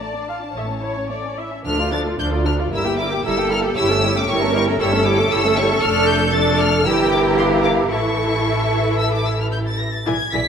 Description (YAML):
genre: quick classical-period movement for string orchestra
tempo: 114 BPM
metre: 4/4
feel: uneven beats, rubato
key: unclear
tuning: A4 = 440 Hz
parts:
  - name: rich studio violin section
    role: melody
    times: 0.0-10.5 s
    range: A5 to B6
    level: -24 LUFS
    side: left 3 dB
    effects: none
  - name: rich studio violin section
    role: second line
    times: 0.0-10.4 s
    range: A3 to G5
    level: -23 LUFS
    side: left 2 dB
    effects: none
  - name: rich studio viola section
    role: accompaniment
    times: 0.0-10.4 s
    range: E3 to F5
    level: -22 LUFS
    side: equal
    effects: none
  - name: clear studio cello section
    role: bass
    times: 0.6-9.8 s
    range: A2 to Bb4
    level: -23 LUFS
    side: right 4 dB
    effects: none
  - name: rich studio double bass section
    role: bass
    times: 0.6-10.4 s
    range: F1 to D2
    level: -23 LUFS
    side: right 2 dB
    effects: none
room: moderate scoring stage reverb, RT60 1.9 s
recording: none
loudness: -16 LUFS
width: side -7 dB against mid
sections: 0.0-1.7 A section; 1.7-10.5 B section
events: none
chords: 0.0 Dm/A; 0.6 A; 1.7 Dm; 2.7 Edim/G; 3.8 A7/G; 5.8 Dm/F; 6.9 Edim/G; 7.9 A